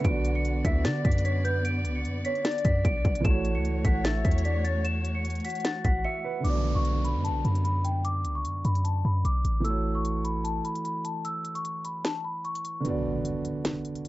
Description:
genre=hip hop, trap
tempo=150 BPM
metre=4/4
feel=half-time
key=B minor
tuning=A4 = 440 Hz
part: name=large celesta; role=melody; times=0.0-12.8 s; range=G5 to E7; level=-33 LUFS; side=left 1 dB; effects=none
part: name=dark baby grand piano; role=accompaniment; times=0.0-14.1 s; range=D3 to F#5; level=-33 LUFS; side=right 3 dB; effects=none
part: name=dark chamber string section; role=sustained chords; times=0.0-6.4 s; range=A3 to D5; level=-38 LUFS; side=left 1 dB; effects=none
part: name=warm 808-style bass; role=bass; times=0.0-10.6 s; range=A1 to D3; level=-27 LUFS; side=equal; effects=none
part: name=trap drum kit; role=drums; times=0.0-14.1 s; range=hi-hat, kick drum, snare drum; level=-28 LUFS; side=equal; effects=none
part: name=soft octave-layered synth lead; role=second line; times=0.6-6.4 s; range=B4 to F#5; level=-34 LUFS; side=left 1 dB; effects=chorus, phaser, ping-pong delay
part: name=downlifter and impact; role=sound effects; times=6.4-9.6, 12.8-14.1 s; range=none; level=-38 LUFS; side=right 1 dB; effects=none
room=little or no reverb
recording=dark, warm production, nothing above 7.8 kHz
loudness=-25 LUFS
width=side -17 dB against mid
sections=0.0-6.4 A section; 6.4-12.8 B section; 12.8-14.1 C section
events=break 6.0-6.4, 11.2-12.8; kick muted 12.8-14.1; impact 12.8-14.1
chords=0.0 Bm; 3.2 A6; 6.4 Bm; 9.6 A6; 12.8 Bm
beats=| 0.05 0.45 0.85 1.25 | 1.65 2.05 2.45 2.85 | 3.25 3.65 4.05 4.45 | 4.85 5.25 5.65 6.05 | 6.45 6.85 7.25 7.65 | 8.05 8.45 8.85 9.25 | 9.65 10.05 10.45 10.85 | 11.25 11.65 12.05 12.45 | 12.85 13.25 13.65 14.05

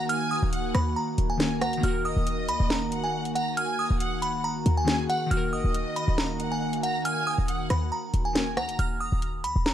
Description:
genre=hip hop, drill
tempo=138 BPM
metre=4/4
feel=half-time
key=Eb minor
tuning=A4 = 439 Hz
part: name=delicate synth tine bell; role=melody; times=0.0-9.7 s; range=Gb5 to F6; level=-30 LUFS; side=right 1 dB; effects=chorus, digital delay
part: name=warm studio violin section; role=second line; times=0.0-8.8 s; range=Eb5 to Bb5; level=-35 LUFS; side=right 2 dB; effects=digital delay
part: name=glassy digital keys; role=accompaniment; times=0.0-8.8 s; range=Eb3 to Bb4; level=-34 LUFS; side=left 3 dB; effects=chorus
part: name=warbly tape-like pad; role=sustained chords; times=0.0-8.8 s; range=Eb3 to Gb4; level=-33 LUFS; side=equal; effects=chorus, built-in reverb
part: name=short 808-style bass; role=bass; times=0.0-9.7 s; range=Eb1 to Eb2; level=-27 LUFS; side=equal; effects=none
part: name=drill drum kit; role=drums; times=0.1-9.7 s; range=hi-hat, rim click, snare drum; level=-29 LUFS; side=equal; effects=none
room=little or no reverb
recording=dark, warm production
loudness=-24 LUFS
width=side -11 dB against mid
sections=0.0-8.8 A section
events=none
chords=0.0 Ebm; 8.8 N.C.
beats=| 0.09 0.53 0.96 1.40 | 1.83 2.27 2.70 3.14 | 3.57 4.01 4.44 4.88 | 5.31 5.75 6.18 6.62 | 7.05 7.49 7.92 8.36 | 8.79 9.22 9.66

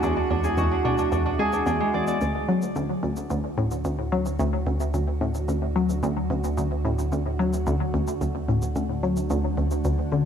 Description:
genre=ambient, sequencer-driven space music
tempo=110 BPM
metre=4/4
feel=straight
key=D lydian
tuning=A4 = 440 Hz
part: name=evolving wavetable pad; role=sustained chords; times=0.0-10.3 s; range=D3 to F#4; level=-31 LUFS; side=right 4 dB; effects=chorus, built-in reverb
part: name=Celtic harp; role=arpeggios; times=0.0-4.5 s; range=G#3 to D5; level=-27 LUFS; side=equal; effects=auto-pan, tape echo
part: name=analog pluck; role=riff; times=0.0-10.3 s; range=D2 to G#3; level=-25 LUFS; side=left 1 dB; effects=chorus, tape echo
part: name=warm sub bass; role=bass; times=0.0-10.3 s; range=D2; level=-30 LUFS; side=equal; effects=tube saturation
part: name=congas and shaker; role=percussion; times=0.0-10.2 s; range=none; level=-36 LUFS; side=left 2 dB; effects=tape echo
room=moderate plate reverb, RT60 2.6 s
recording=cassette tape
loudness=-22 LUFS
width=side -8 dB against mid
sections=0.0-2.2 A section; 2.2-10.3 B section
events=fade-in on ambient pad 2.2-10.3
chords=0.0 Eadd9/D; 2.2 D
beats=| 0.03 0.57 1.12 1.67 | 2.21 2.76 3.30 3.85 | 4.39 4.94 5.49 6.03 | 6.58 7.12 7.67 8.21 | 8.76 9.30 9.85

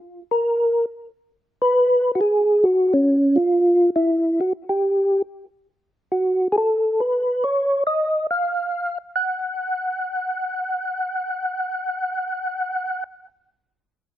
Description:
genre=jazz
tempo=138 BPM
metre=4/4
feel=swing 66% on 8ths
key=F# major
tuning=A4 = 441 Hz
part: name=percussive tonewheel organ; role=solo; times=0.3-13.0 s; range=C#4 to F#5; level=-19 LUFS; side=equal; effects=slow rotary speaker, chorus vibrato
room=little or no reverb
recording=recorded outdoors, with no room sound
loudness=-19 LUFS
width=side -12 dB against mid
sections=0.0-5.7 A section; 5.7-9.2 B section; 9.2-12.6 C section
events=none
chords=none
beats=0.02 | 0.45 0.89 1.33 1.76 | 2.20 2.63 3.07 3.50 | 3.94 4.38 4.81 5.25 | 5.68 6.12 6.55 6.99 | 7.42 7.86 8.29 8.73 | 9.16 9.60 10.03 10.47 | 10.90 11.34 11.77 12.21

